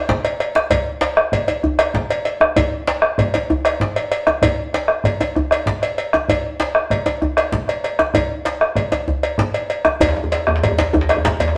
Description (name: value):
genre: west african traditional, West African drum ensemble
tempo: 129 BPM (dotted quarters)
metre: 12/8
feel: straight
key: none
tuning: none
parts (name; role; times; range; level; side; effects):
- bombo; percussion; 0.1-11.5 s; none; -21 LUFS; equal; none
- djembe; percussion; 0.1-11.4 s; none; -24 LUFS; equal; none
- cowbell; percussion; 0.2-11.5 s; none; -23 LUFS; equal; none
- djembe; percussion; 10.0-11.6 s; none; -22 LUFS; equal; none
room: wet studio reverb, RT60 1.0 s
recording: none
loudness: -18 LUFS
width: mono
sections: 0.0-10.0 A section; 10.0-11.6 B section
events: none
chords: none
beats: 0.24 | 0.71 1.17 1.64 2.10 | 2.57 3.03 3.50 3.96 | 4.43 4.89 5.36 5.82 | 6.29 6.75 7.21 7.68 | 8.14 8.61 9.07 9.54 | 10.00 10.47 10.93 11.40